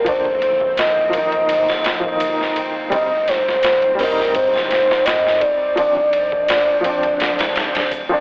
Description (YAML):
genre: trip hop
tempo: 84 BPM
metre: 4/4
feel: swing 54% on 16ths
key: unclear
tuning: A4 = 442 Hz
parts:
  - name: pure breathy sine lead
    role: melody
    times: 0.0-7.9 s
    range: Bb4 to Eb5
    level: -17 LUFS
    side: equal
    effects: chorus, dub echo
  - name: dark upright piano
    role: accompaniment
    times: 0.0-8.2 s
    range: F3 to Eb4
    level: -22 LUFS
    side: equal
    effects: tremolo, tape echo
  - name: warbly tape-like pad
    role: sustained chords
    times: 0.0-8.2 s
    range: F3 to C5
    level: -28 LUFS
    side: equal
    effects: chorus, built-in reverb, vintage 12-bit sampler grit
  - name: dark detuned saw bass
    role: bass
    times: 0.0-8.2 s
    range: D1 to G1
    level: -39 LUFS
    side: equal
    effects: none
  - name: bowed-like drone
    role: texture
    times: 0.0-8.2 s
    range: C4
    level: -31 LUFS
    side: equal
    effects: none
  - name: boom bap sampler-style drum kit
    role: drums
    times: 0.1-8.1 s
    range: hi-hat, kick drum, ride cymbal, snare drum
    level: -22 LUFS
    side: equal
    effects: overdrive
  - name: egg shaker and triangle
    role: percussion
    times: 0.8-8.1 s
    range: none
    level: -35 LUFS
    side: equal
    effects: none
room: light reverb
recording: dry, gritty hardware recording, transformer saturation, telephone sound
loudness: -14 LUFS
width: side -29 dB against mid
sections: 0.0-8.2 A section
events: none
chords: 0.1 F7sus4/D; 2.9 Eb6/D; 5.8 Dm7